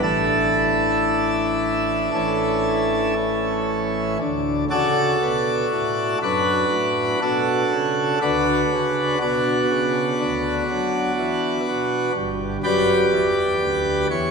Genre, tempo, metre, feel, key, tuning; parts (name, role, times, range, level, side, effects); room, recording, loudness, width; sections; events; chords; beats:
classical, chorale-style piece for pipe organ; 57-62 BPM; 4/4; straight; D major; A4 = 439 Hz
pipe organ, plenum; solo; 0.0-14.3 s; G1 to D5; -18 LUFS; equal
wet church reverb, RT60 3.7 s; minimal, uncompressed stereo recording; -18 LUFS; side -5 dB against mid
0.0-4.2 A section; 4.2-14.3 B section
0.0 Asus4; 2.1 A; 4.2 D; 8.2 Bm/D; 10.2 E5/D; 12.2 Em/G
| 0.03 1.09 2.14 3.18 | 4.21 5.22 6.22 7.22 | 8.21 9.21 10.20 11.18 | 12.15 13.13 14.11